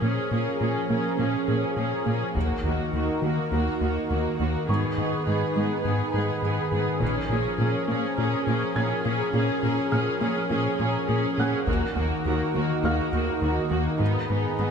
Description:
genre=cinematic, hybrid orchestral and electronic film score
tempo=103 BPM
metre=4/4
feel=straight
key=Bb phrygian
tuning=A4 = 440 Hz
part: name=rich symphonic viola section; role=accompaniment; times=0.0-14.7 s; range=Bb3 to Ab4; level=-29 LUFS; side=right 1 dB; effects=none
part: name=chorused pulse-width pad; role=sustained chords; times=0.0-14.7 s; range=Eb3 to Cb5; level=-28 LUFS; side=equal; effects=none
part: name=rubbery square bass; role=riff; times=0.0-14.7 s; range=Eb2 to Bb3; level=-28 LUFS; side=left 3 dB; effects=none
part: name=rich symphonic cello section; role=bass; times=0.0-14.7 s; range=Eb2 to Bb2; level=-31 LUFS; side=right 4 dB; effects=none
part: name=felt-muted upright piano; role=texture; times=0.0-14.7 s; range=F5 to Ab6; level=-37 LUFS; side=left 1 dB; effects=digital delay
part: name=taiko ensemble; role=drums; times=2.4-3.5, 7.0-8.1, 11.7-12.8 s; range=none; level=-34 LUFS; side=equal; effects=none
room=moderate scoring stage reverb, RT60 1.8 s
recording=none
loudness=-23 LUFS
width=side -6 dB against mid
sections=0.0-14.7 A section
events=none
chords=0.0 Bbm7; 2.4 Ebm; 4.7 Abm; 7.0 Bbm7; 11.7 Ebm; 14.0 Abm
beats=| 0.02 0.60 1.19 1.77 | 2.35 2.94 3.52 4.10 | 4.68 5.26 5.85 6.43 | 7.01 7.59 8.18 8.76 | 9.34 9.93 10.51 11.09 | 11.67 12.26 12.84 13.42 | 14.00 14.59

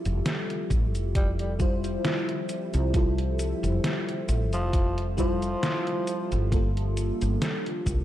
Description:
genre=vaporwave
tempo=67 BPM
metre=4/4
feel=swing 54% on 16ths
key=F major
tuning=A4 = 442 Hz
part: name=FM electric piano with soft pad layer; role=accompaniment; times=0.0-8.0 s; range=G3 to C5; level=-30 LUFS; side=equal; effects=analog chorus, cassette tape, analog delay
part: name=warbly tape-like pad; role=sustained chords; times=0.0-8.0 s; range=F3 to E5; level=-38 LUFS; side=left 1 dB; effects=chorus, built-in reverb, vintage 12-bit sampler grit
part: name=woody fretless electric bass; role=bass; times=0.1-8.0 s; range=F1 to C2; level=-27 LUFS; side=equal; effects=analog chorus
part: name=detuned 8-bit digital drum machine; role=drums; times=0.1-8.0 s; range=cabasa, hi-hat, snare drum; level=-31 LUFS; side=equal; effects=gated reverb
part: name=electronic kick drum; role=drums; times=0.7-8.0 s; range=none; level=-26 LUFS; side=equal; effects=none
part: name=growling tenor saxophone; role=melody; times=1.2-6.4 s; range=F3 to G3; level=-34 LUFS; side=equal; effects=tape echo
room=light reverb, digital ambience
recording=none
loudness=-24 LUFS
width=side -13 dB against mid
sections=0.0-8.0 A section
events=none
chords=0.0 Fmaj9; 6.5 Gm9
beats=0.26 1.15 2.05 | 2.94 3.84 4.73 5.63 | 6.53 7.42

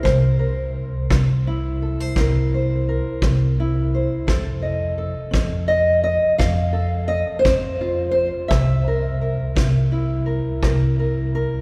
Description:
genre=acoustic country blues, solo or duo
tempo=57 BPM (dotted quarters)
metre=12/8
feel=straight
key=C mixolydian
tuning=A4 = 440 Hz
part: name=fingerpicked steel-string acoustic guitar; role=melody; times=0.0-11.6 s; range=C3 to F5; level=-25 LUFS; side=equal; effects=none
part: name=upright bass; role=bass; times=0.1-11.5 s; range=C2 to F2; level=-23 LUFS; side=equal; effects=none
part: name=kick drum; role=drums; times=0.1-10.8 s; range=none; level=-27 LUFS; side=equal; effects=none
room=wet cathedral reverb, RT60 5.2 s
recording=recorded in a church or concert hall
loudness=-20 LUFS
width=mono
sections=0.0-11.6 A section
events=none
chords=0.0 C7; 4.3 F7; 8.5 C7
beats=| 0.05 1.11 2.16 3.22 | 4.28 5.33 6.39 7.45 | 8.51 9.56 10.62

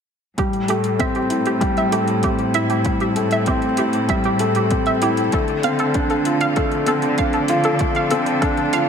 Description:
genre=piano and strings electronica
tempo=97 BPM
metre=4/4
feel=straight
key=A minor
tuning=A4 = 436 Hz
part: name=clear string quartet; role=sustained chords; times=0.4-8.9 s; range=F3 to A4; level=-31 LUFS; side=left 1 dB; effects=sidechain pumping
part: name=analog pluck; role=arpeggios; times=0.4-8.8 s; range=G4 to F5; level=-24 LUFS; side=right 3 dB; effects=chorus, sidechain pumping, ping-pong delay
part: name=felt-muted upright piano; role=riff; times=0.4-8.9 s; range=G3 to F4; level=-19 LUFS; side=left 1 dB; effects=ping-pong delay
part: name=warm symphonic cello section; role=bass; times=0.4-8.9 s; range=A2 to D3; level=-25 LUFS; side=right 1 dB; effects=tube saturation, sidechain pumping
part: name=electronic hi-hat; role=drums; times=0.4-8.9 s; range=none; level=-34 LUFS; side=equal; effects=overdrive
part: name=electronic kick drum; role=drums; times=0.4-8.5 s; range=none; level=-24 LUFS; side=right 1 dB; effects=overdrive
room=moderate scoring stage reverb, RT60 1.6 s, studio reverb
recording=none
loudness=-16 LUFS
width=side -7 dB against mid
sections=0.4-8.9 A section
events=fade-in on string quartet 0.4-8.9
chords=0.4 Am7; 5.3 Dm7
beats=| 0.39 1.00 1.62 2.24 | 2.86 3.48 4.10 4.71 | 5.33 5.95 6.57 7.19 | 7.81 8.43

